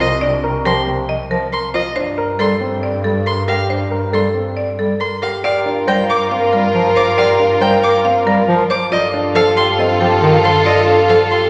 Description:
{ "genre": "classical, minimalist pattern music", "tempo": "138 BPM", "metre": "4/4", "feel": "straight", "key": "G minor", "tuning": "A4 = 440 Hz", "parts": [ { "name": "buzzing marimba with hard mallets", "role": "melody", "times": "0.0-11.4 s", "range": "A4 to F5", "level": "-23 LUFS", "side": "equal", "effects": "none" }, { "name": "dark baby grand piano", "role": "arpeggios", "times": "0.0-11.5 s", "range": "C4 to C5", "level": "-24 LUFS", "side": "equal", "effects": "none" }, { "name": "dark violin", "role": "arpeggios", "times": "0.0-11.5 s", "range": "Eb5 to D6", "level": "-23 LUFS", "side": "equal", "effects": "none" }, { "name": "warm double bass", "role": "bass", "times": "0.0-11.5 s", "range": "C2 to G2", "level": "-26 LUFS", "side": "equal", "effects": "none" }, { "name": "mellow bass clarinet", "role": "accompaniment", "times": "0.7-11.2 s", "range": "Eb3 to G3", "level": "-23 LUFS", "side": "equal", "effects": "none" }, { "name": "clear French horn", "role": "second line", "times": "5.4-11.5 s", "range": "A4 to Bb4", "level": "-20 LUFS", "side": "equal", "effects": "none" }, { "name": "rich studio string section", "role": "sustained chords", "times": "5.4-11.5 s", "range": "F4 to Bb4", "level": "-20 LUFS", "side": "equal", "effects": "none" } ], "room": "wet scoring stage reverb, RT60 1.7 s", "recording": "none", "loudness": "-15 LUFS", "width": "mono", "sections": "0.0-5.4 A section; 5.4-11.5 B section", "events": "none", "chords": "0.0 Cm9; 2.0 Gmadd9; 5.4 Gm7; 8.9 F9/G" }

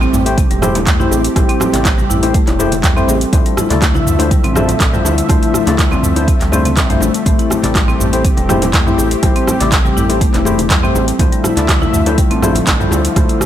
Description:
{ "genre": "afro house", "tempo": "122 BPM", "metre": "4/4", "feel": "straight", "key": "A minor", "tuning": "A4 = 440 Hz", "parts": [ { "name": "warm analog pad", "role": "sustained chords", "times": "0.0-13.5 s", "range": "D3 to E5", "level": "-21 LUFS", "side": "equal", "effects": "chorus, vintage 12-bit sampler grit, sidechain pumping" }, { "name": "marimba with medium mallets", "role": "arpeggios", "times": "0.0-13.4 s", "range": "G3 to E4", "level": "-19 LUFS", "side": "left 3 dB", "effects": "sidechain pumping, ping-pong delay" }, { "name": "round analog bass", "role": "bass", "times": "0.0-13.3 s", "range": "E1 to E2", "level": "-19 LUFS", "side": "right 1 dB", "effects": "sidechain pumping" }, { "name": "afro-pop drum kit", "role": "drums", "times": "0.0-13.5 s", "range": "cabasa, handclaps, hi-hat, rim click, toms", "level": "-19 LUFS", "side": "right 1 dB", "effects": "studio reverb" }, { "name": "congas", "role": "percussion", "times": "0.0-13.5 s", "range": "none", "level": "-24 LUFS", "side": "right 4 dB", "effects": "none" }, { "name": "bongos", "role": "percussion", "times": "0.1-13.3 s", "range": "none", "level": "-26 LUFS", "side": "left 4 dB", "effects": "none" }, { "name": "barky tine electric piano", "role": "stabs", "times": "0.3-13.5 s", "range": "A3 to D5", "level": "-20 LUFS", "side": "left 3 dB", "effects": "overdrive, lush chorus, sidechain pumping, ping-pong delay" }, { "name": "electronic kick drum", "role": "drums", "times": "0.4-13.3 s", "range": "none", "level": "-15 LUFS", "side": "right 1 dB", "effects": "studio reverb" } ], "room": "digital ambience", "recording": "none", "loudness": "-11 LUFS", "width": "side -11 dB against mid", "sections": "0.0-13.5 A section", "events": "none", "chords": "0.0 Am7; 3.3 Dm9; 7.3 Am7; 11.2 Dm9" }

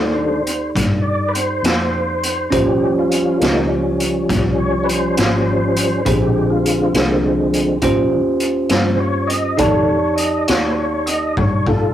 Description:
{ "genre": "slow blues", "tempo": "68 BPM (dotted quarters)", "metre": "12/8", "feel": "straight", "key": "unclear", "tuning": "A4 = 439 Hz", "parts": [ { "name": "bell-like tine electric piano", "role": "accompaniment", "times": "0.0-11.9 s", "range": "Db4 to A5", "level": "-20 LUFS", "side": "right 2 dB", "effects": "none" }, { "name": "tonewheel organ", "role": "sustained chords", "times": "0.0-11.9 s", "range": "Db3 to Eb5", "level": "-18 LUFS", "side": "left 1 dB", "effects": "slow rotary speaker, overdrive, chorus vibrato" }, { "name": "vintage muted fingered electric bass", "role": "bass", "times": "0.0-11.9 s", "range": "Ab1 to G2", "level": "-23 LUFS", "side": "left 1 dB", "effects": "none" }, { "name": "raw garage drum kit", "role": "drums", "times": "0.5-11.8 s", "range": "hi-hat, kick drum, snare drum", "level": "-20 LUFS", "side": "equal", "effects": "none" } ], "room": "light reverb", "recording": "rough rehearsal-room recording", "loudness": "-14 LUFS", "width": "side -11 dB against mid", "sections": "0.0-11.9 A section", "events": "tonewheel organ solo 0.0-11.9; drum fill 11.4-11.9", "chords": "0.0 F13; 2.5 Eb13; 6.1 Bb13; 7.8 Eb13; 9.6 F13" }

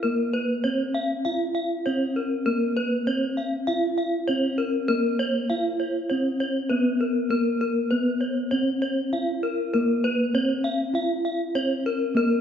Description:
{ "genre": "gamelan", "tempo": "99 BPM", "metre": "4/4", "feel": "straight", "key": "unclear", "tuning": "A4 = 440 Hz", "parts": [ { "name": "gamelan-type bronze metallophone", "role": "melody", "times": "0.0-12.4 s", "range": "Bb3 to F4-45c", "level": "-24 LUFS", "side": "equal", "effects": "none" }, { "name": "gamelan-type bronze metallophone", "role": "arpeggios", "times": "0.0-12.3 s", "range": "Bb4 to F5-45c", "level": "-27 LUFS", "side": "left 2 dB", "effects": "none" } ], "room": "wet recital hall reverb, RT60 1.7 s", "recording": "recorded in a church or concert hall, nothing above 7.7 kHz", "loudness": "-22 LUFS", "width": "side -8 dB against mid", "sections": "0.0-9.7 A section; 9.7-12.4 A section", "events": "none", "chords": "none" }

